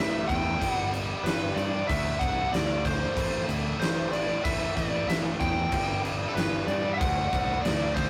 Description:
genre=hard rock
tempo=94 BPM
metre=4/4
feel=straight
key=A dorian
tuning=A4 = 440 Hz
part: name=bluesy overdriven lead guitar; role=melody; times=0.0-8.1 s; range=A4 to G5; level=-32 LUFS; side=equal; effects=distortion
part: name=tight distorted guitar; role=riff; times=0.0-8.1 s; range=G2 to D4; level=-37 LUFS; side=equal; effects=distortion
part: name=growling fingered electric bass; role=bass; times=0.0-8.1 s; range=G1 to G2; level=-35 LUFS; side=equal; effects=overdrive
part: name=huge arena drum kit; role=drums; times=0.3-8.1 s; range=crash cymbal, kick drum, snare drum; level=-31 LUFS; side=equal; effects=none
room=moderate stone room reverb, RT60 1.4 s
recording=rough rehearsal-room recording, warm saturation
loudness=-27 LUFS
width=mono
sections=0.0-8.1 A section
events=none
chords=0.0 A5; 0.6 G5; 1.9 D5; 3.2 A5; 5.7 G5; 7.0 D5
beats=0.61 1.25 | 1.89 2.53 3.16 3.80 | 4.44 5.08 5.72 6.36 | 7.00 7.64

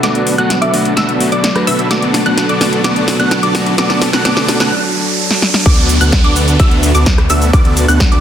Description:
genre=EDM, festival progressive house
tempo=128 BPM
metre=4/4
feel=straight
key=D major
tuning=A4 = 440 Hz
part: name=electric guitar at the edge of break-up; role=accompaniment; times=0.0-4.7 s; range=A3 to F#4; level=-19 LUFS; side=equal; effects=sidechain pumping, tape echo
part: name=lush unison pad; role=sustained chords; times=0.0-8.2 s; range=D3 to B4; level=-20 LUFS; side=right 1 dB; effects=chorus, sidechain pumping
part: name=wide unison pluck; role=arpeggios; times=0.0-8.2 s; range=D6 to F#6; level=-19 LUFS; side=equal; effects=sidechain pumping, tape echo
part: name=dense compressed supersaw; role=riff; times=0.0-8.2 s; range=B3 to F#5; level=-17 LUFS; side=equal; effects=sidechain pumping, low-pass filter, tape echo
part: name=big-room dance drum kit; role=drums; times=0.0-8.2 s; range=crash cymbal, hi-hat, rim click, shaker, snare drum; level=-17 LUFS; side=equal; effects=none
part: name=riser and downlifter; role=sound effects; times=0.7-8.2 s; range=none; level=-21 LUFS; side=right 2 dB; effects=none
part: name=thumb-piano-like synth pluck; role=melody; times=0.6-1.7 s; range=B4 to E5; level=-22 LUFS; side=left 1 dB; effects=chorus, tape echo
part: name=wide detuned saw bass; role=bass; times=5.7-8.2 s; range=D2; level=-14 LUFS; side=equal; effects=chorus, sidechain pumping
part: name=electronic kick drum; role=drums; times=5.7-8.1 s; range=none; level=-10 LUFS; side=equal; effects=none
room=moderate digital room reverb, RT60 1.1 s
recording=dense, heavily limited modern master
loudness=-10 LUFS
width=side -9 dB against mid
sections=0.0-5.7 A section; 5.7-8.2 B section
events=build-up 0.0-5.7; drum fill 0.0-4.7, 5.3-5.7; filter sweep on supersaw synth 0.0-5.7; riser 0.7-5.7; drop 5.7-8.2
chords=0.0 D6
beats=| 0.03 0.50 0.97 1.44 | 1.91 2.38 2.85 3.31 | 3.78 4.25 4.72 5.19 | 5.66 6.13 6.60 7.06 | 7.53 8.00

